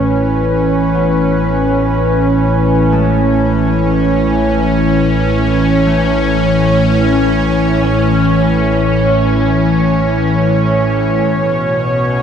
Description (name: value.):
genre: ambient.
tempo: 61 BPM.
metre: 4/4.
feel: straight.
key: A major.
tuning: A4 = 440 Hz.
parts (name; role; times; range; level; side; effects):
warm analog pad; sustained chords; 0.0-12.2 s; A2 to C#5; -12 LUFS; equal; chorus.
concert harp; arpeggios; 0.0-11.4 s; G#3 to A5; -29 LUFS; left 2 dB; none.
warm sub bass; bass; 0.0-12.2 s; A1 to B1; -24 LUFS; equal; none.
bowed-like drone; drone; 0.0-12.2 s; C#4; -19 LUFS; left 2 dB; built-in reverb, phaser.
room: wet huge ambient reverb, RT60 7.5 s.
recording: none.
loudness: -11 LUFS.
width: side -8 dB against mid.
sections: 0.0-12.2 A section.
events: fade-in on sub bass 0.0-12.2.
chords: 0.0 Amaj7; 11.3 B5.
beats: 0.46 1.44 2.43 | 3.41 4.39 5.38 6.36 | 7.34 8.33 9.31 10.30 | 11.28.